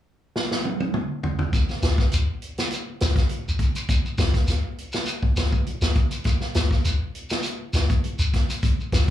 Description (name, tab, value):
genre	afrobeat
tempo	102 BPM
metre	4/4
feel	straight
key	none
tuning	none
part	vintage drum kit	drums	0.4-9.1 s	hi-hat, kick drum, snare drum, toms	-22 LUFS	equal	none
part	shekere	percussion	1.5-9.1 s	none	-25 LUFS	equal	none
room	light reverb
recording	live gig heard through the venue's PA, club reverb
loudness	-21 LUFS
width	side -12 dB against mid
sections	0.0-1.5 A section; 1.5-9.1 B section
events	drum fill 0.3-1.5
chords	none